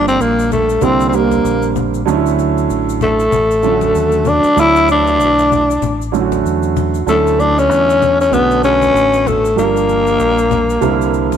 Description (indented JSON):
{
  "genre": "hip hop, jazz-hop",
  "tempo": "96 BPM",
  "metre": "4/4",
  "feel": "swing 59% on 16ths",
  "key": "D major",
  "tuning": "A4 = 439 Hz",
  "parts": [
    { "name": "growling tenor saxophone", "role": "melody", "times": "0.0-11.4 s", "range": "A3 to E4", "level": "-12 LUFS", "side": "left 2 dB", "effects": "none" },
    { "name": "dark grand piano", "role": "accompaniment", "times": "0.0-11.4 s", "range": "D3 to C#5", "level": "-17 LUFS", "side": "right 9 dB", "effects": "none" },
    { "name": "deep dub fingered electric bass", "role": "bass", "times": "0.0-11.4 s", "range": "G1 to E2", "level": "-21 LUFS", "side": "left 1 dB", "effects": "none" },
    { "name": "tube shaker and congas", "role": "percussion", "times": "0.1-11.4 s", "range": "none", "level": "-26 LUFS", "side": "left 11 dB", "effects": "none" }
  ],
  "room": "moderate echo chamber reverb, RT60 1.8 s, studio reverb",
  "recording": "1960s-style stereo with parts hard left and right",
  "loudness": "-11 LUFS",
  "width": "side -8 dB against mid",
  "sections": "0.0-7.1 A section; 7.1-11.4 B section",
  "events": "none",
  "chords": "0.0 Gm7; 0.8 C9; 2.1 Dmaj9; 8.3 Bm9; 9.6 Gm7; 10.8 C9"
}